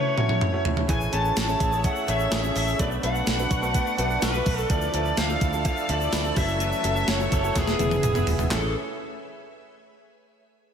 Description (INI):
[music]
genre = 1980s-style pop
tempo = 126 BPM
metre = 4/4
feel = straight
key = A major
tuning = A4 = 441 Hz
[part]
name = bluesy overdriven lead guitar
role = melody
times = 0.0-8.7 s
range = G#4 to A5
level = -28 LUFS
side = left 2 dB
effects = distortion, tape echo
[part]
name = warm concert grand piano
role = accompaniment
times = 0.0-8.7 s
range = E3 to C#5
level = -29 LUFS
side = right 2 dB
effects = slapback echo
[part]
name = clean 12-bit digital drum machine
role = drums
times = 0.2-8.6 s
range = handclaps, hi-hat, kick drum, snare drum, tambourine, toms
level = -26 LUFS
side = equal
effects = overdrive
[part]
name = soft string machine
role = sustained chords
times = 1.3-8.7 s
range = B4 to E6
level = -37 LUFS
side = equal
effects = ensemble chorus
[part]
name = direct-recorded clean electric guitar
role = riff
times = 0.9-8.7 s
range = E3 to A4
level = -34 LUFS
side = right 4 dB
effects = ensemble chorus, slapback echo
[part]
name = vintage muted fingered electric bass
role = bass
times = 0.9-8.7 s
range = E1 to D2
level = -29 LUFS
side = equal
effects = none
[part]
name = tube shaker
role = percussion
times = 0.9-8.7 s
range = none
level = -43 LUFS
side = left 11 dB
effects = none
[sound]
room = wet lush hall reverb, RT60 1.7 s, digital ambience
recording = big arena sound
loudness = -22 LUFS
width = side -8 dB against mid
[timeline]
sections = 0.0-8.5 A section; 8.5-10.4 B section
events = drum fill 0.0-0.9, 7.6-8.5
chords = 0.0 F#m7; 0.9 Amaj7; 2.8 Bm7; 4.7 Dmadd9; 6.4 F#m7; 7.6 E; 8.5 Amaj7